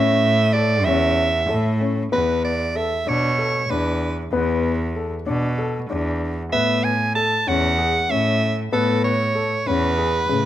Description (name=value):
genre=contemporary instrumental, chamber music in an uneven meter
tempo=191 BPM (eighths)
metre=7/8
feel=straight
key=E mixolydian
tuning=A4 = 440 Hz
part: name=bright soprano saxophone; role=melody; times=0.0-10.5 s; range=A4 to A5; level=-21 LUFS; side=right 3 dB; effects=none
part: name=dark concert grand piano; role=arpeggios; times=0.0-10.5 s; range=C#3 to A4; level=-24 LUFS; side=left 4 dB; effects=none
part: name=clear cello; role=bass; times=0.0-10.5 s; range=E2 to B2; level=-22 LUFS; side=equal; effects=none
room=light reverb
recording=close, detailed microphones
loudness=-18 LUFS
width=side -12 dB against mid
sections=0.0-2.1 A section; 2.1-10.5 B section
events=none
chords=0.0 A; 2.1 E7sus4; 6.5 Aadd9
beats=0.24 0.55 0.87 1.18 1.50 1.81 | 2.13 2.44 2.76 3.07 3.39 3.70 4.02 | 4.33 4.64 4.96 5.27 5.59 5.90 6.22 | 6.53 6.84 7.16 7.47 7.79 8.10 8.41 | 8.73 9.04 9.36 9.67 9.98 10.30